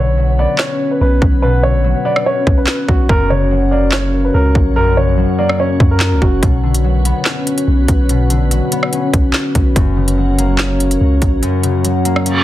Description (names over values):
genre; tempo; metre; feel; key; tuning
hip hop, drill; 144 BPM; 4/4; half-time; B harmonic minor; A4 = 439 Hz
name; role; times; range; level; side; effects
dark baby grand piano; melody; 0.0-6.4 s; F#4 to D5; -18 LUFS; right 2 dB; low-pass filter
concert harp; accompaniment; 0.0-12.4 s; F#2 to C#4; -17 LUFS; left 2 dB; low-pass filter
glassy FM pad; sustained chords; 0.2-12.4 s; F#3 to C#5; -23 LUFS; equal; ensemble chorus, built-in reverb
long sustained 808-style bass; bass; 0.0-11.4 s; F#1 to F#2; -15 LUFS; equal; none
drill drum kit; drums; 0.6-12.4 s; handclaps, hi-hat, kick drum, rim click, snare drum; -15 LUFS; equal; none
reverse cymbal; sound effects; 12.3-12.4 s; none; -14 LUFS; right 4 dB; none
room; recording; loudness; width
little or no reverb; dense, heavily limited modern master; -11 LUFS; side -14 dB against mid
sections
0.0-12.4 A section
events
break 0.0-6.4; kick muted 11.4-12.4; reverse cymbal 12.3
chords
0.0 Bmadd9; 3.1 F#; 6.4 Bmadd9; 9.8 F#